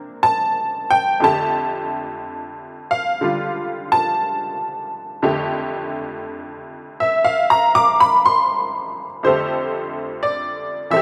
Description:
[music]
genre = solo jazz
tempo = 60 BPM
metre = 4/4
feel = swing 69% on 8ths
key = F major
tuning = A4 = 440 Hz
[part]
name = honky-tonk upright piano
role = solo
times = 0.0-11.0 s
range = F2 to D6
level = -20 LUFS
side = equal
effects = none
[sound]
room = light reverb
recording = recorded outdoors, with no room sound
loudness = -19 LUFS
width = mono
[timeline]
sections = 0.0-9.2 A section; 9.2-11.0 B section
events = honky-tonk piano solo 0.0-9.2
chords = 0.0 C9; 1.2 F69

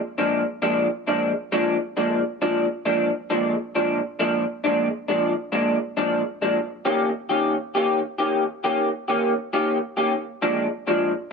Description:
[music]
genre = blues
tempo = 135 BPM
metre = 4/4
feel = swing 65% on 8ths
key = Bb mixolydian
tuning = A4 = 440 Hz
[part]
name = electric guitar through a small old amp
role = solo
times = 0.2-11.1 s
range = Bb2 to G4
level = -21 LUFS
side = equal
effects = analog chorus, digital delay
[sound]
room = moderate club reverb, RT60 0.9 s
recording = none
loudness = -21 LUFS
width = side -5 dB against mid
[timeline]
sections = 0.0-11.3 A section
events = none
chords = 0.0 Bb7; 6.6 Eb7; 10.1 Bb7

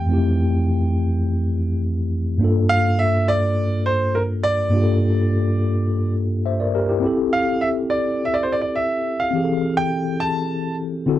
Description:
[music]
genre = soul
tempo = 104 BPM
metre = 4/4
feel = straight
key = G dorian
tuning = A4 = 441 Hz
[part]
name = clear concert grand piano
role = melody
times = 0.0-10.7 s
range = Bb4 to A5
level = -22 LUFS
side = right 2 dB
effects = none
[part]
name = mellow tine electric piano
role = accompaniment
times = 0.0-11.2 s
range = F2 to E5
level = -19 LUFS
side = left 1 dB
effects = medium stereo tremolo
[sound]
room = light reverb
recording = dry, close 1970s-style studio recording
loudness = -18 LUFS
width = side -13 dB against mid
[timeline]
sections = 0.0-2.4 A section; 2.4-11.2 B section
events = none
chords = 0.0 Fmaj9; 2.4 Gm7; 7.0 Am7

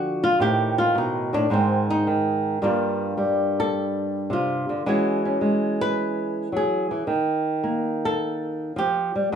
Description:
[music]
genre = solo jazz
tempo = 108 BPM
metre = 4/4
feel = swing 69% on 8ths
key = unclear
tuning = A4 = 442 Hz
[part]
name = flamenco guitar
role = solo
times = 0.0-9.4 s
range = G2 to B4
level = -21 LUFS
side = equal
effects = none
[sound]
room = light reverb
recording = small room ambience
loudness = -21 LUFS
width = side -8 dB against mid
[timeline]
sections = 0.0-9.4 A section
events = nylon-string guitar solo 0.0-9.4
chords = 0.4 Adim; 1.5 G#5; 2.6 Gm9; 4.9 E69; 7.1 Ebadd9

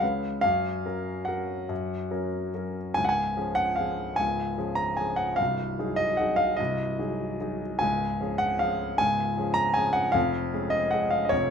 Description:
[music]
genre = classical, piano waltz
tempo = 137-161 BPM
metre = 3/4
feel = rubato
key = Db major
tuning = A4 = 440 Hz
[part]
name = clear grand piano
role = solo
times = 0.0-11.5 s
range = C1 to Bb5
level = -24 LUFS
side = equal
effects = none
[sound]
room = moderate large studio reverb, RT60 0.8 s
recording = none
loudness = -25 LUFS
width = side -7 dB against mid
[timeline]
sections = 0.0-3.0 A section; 3.0-11.5 B section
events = none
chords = 0.0 C#7; 0.4 F#; 3.0 Db; 5.4 Ab7/C; 7.8 Db; 10.2 Db/F

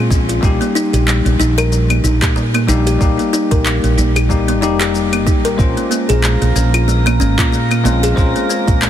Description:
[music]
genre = organic downtempo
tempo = 93 BPM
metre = 4/4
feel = swing 57% on 16ths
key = unclear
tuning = A4 = 440 Hz
[part]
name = bell-like tine electric piano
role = accompaniment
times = 0.0-8.9 s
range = G3 to C5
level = -20 LUFS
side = left 5 dB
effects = sidechain pumping, ping-pong delay
[part]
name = kalimba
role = arpeggios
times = 0.0-8.9 s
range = G3 to Bb4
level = -19 LUFS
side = right 1 dB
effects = ping-pong delay
[part]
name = woody fretless electric bass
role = bass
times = 0.0-8.9 s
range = F1 to Bb2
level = -16 LUFS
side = right 1 dB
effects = sidechain pumping
[part]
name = deep house drum kit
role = drums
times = 0.1-8.9 s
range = claves, handclaps, hi-hat, shaker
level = -21 LUFS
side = left 2 dB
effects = overdrive, small room ambience
[part]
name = electronic kick drum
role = drums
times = 0.1-8.8 s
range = none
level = -16 LUFS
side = right 1 dB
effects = small room ambience
[part]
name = drifting glass-harmonics texture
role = texture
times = 6.0-8.9 s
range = Bb3 to Bb4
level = -22 LUFS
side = right 4 dB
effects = chorus, built-in reverb
[sound]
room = light reverb, digital ambience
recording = dense, heavily limited modern master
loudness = -12 LUFS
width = side -10 dB against mid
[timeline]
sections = 0.0-8.9 A section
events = none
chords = 0.4 Eb/Bb; 5.6 Bbm7

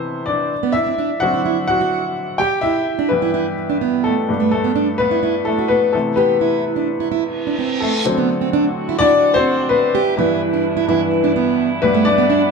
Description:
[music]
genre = piano-driven pop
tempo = 127 BPM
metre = 4/4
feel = straight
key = G major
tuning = A4 = 440 Hz
[part]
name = clear upright piano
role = accompaniment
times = 0.0-12.5 s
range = G2 to G5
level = -17 LUFS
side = left 3 dB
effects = none
[part]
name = fingerpicked plugged-in steel-string acoustic guitar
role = riff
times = 0.6-12.4 s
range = A3 to G4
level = -20 LUFS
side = right 8 dB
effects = none
[part]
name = reverse cymbal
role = sound effects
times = 7.3-8.1 s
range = none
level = -25 LUFS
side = right 3 dB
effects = none
[part]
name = muted French horn section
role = sustained chords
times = 8.1-12.5 s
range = B2 to F#4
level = -26 LUFS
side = right 2 dB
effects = none
[sound]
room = wet large studio reverb, RT60 0.9 s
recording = band playing live in one room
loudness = -15 LUFS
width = side -4 dB against mid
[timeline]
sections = 0.0-8.1 A section; 8.1-12.5 B section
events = upright piano solo 0.0-8.1, 8.1-12.5; reverse cymbal 7.3-8.1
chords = 0.0 Cmaj7; 0.5 D7; 2.4 G6; 4.3 Emadd9/G; 5.9 Cmaj7; 8.1 D7; 9.9 G6; 11.8 Emadd9/G

